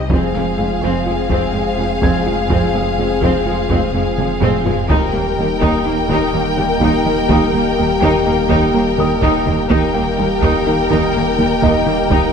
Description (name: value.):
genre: cinematic, hybrid orchestral and electronic film score.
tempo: 125 BPM.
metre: 5/4.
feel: straight.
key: unclear.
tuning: A4 = 440 Hz.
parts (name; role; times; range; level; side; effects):
clear symphonic violin section; melody; 0.0-12.3 s; F5 to G5; -23 LUFS; left 4 dB; none.
rich studio violin section; second line; 0.0-12.3 s; Ab4 to Bb4; -23 LUFS; left 2 dB; none.
airy breathy pad; sustained chords; 0.0-12.3 s; G3 to Eb5; -24 LUFS; right 2 dB; chorus.
dark French horn section; sustained chords; 0.0-12.3 s; Bb3 to Ab4; -21 LUFS; left 4 dB; none.
sub bass with octave; bass; 0.0-12.3 s; Eb1 to C2; -27 LUFS; equal; none.
felt-muted upright piano; texture; 0.0-4.9, 9.0-12.3 s; Eb5 to Bb6; -27 LUFS; equal; tape echo.
clear symphonic viola section; accompaniment; 0.1-12.3 s; F3 to Eb4; -23 LUFS; equal; none.
thumb-piano-like synth pluck; arpeggios; 0.1-12.2 s; Eb3 to F4; -25 LUFS; left 1 dB; chorus, tape echo.
bright studio double bass section; bass; 0.1-12.2 s; F1 to Eb2; -23 LUFS; right 4 dB; none.
rich symphonic cello section; bass; 0.1-12.2 s; Eb2 to F2; -23 LUFS; right 4 dB; none.
taiko ensemble; drums; 0.1-12.3 s; none; -22 LUFS; equal; none.
room: moderate concert hall reverb, RT60 2.1 s.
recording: none.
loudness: -13 LUFS.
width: side -6 dB against mid.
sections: 0.0-12.3 A section.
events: drum fill 4.2-4.9.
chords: 0.1 Fm; 4.9 Eb.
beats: | 0.10 0.58 1.06 1.54 2.02 | 2.50 2.98 3.46 3.94 4.42 | 4.90 5.38 5.86 6.34 6.82 | 7.30 7.78 8.26 8.74 9.22 | 9.70 10.18 10.66 11.14 11.62 | 12.10.